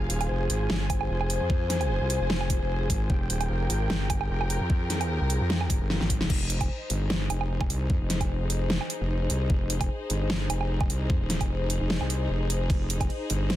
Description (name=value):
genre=heavy wobble dubstep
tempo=150 BPM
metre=4/4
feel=swing 54% on 16ths, half-time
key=F minor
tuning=A4 = 440 Hz
part: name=supersaw chords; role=sustained chords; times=0.0-6.3 s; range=F4 to Ab5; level=-36 LUFS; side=right 1 dB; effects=sidechain pumping, low-pass filter
part: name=wobble bass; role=bass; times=0.0-13.6 s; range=Eb1 to F2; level=-28 LUFS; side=equal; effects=chorus, overdrive
part: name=warm studio string section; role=texture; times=0.0-13.6 s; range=Eb4 to F5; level=-34 LUFS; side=left 2 dB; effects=sidechain pumping
part: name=dubstep drum kit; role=drums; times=0.1-13.6 s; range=crash cymbal, hi-hat, ride cymbal, snare drum, woodblock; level=-30 LUFS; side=right 1 dB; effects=overdrive
part: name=electronic kick drum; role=drums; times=0.9-13.1 s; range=none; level=-27 LUFS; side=equal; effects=overdrive
room=light reverb, digital ambience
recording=dense, heavily limited modern master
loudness=-24 LUFS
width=side -13 dB against mid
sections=0.0-6.3 A section; 6.3-13.6 A section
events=drop 0.0-6.3, 6.3-13.6; drum fill 5.9-6.3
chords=0.0 Fm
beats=0.30 0.70 1.10 | 1.50 1.90 2.30 2.70 | 3.10 3.50 3.90 4.30 | 4.70 5.10 5.50 5.90 | 6.30 6.70 7.10 7.50 | 7.90 8.30 8.70 9.10 | 9.50 9.90 10.30 10.70 | 11.10 11.50 11.90 12.30 | 12.70 13.10 13.50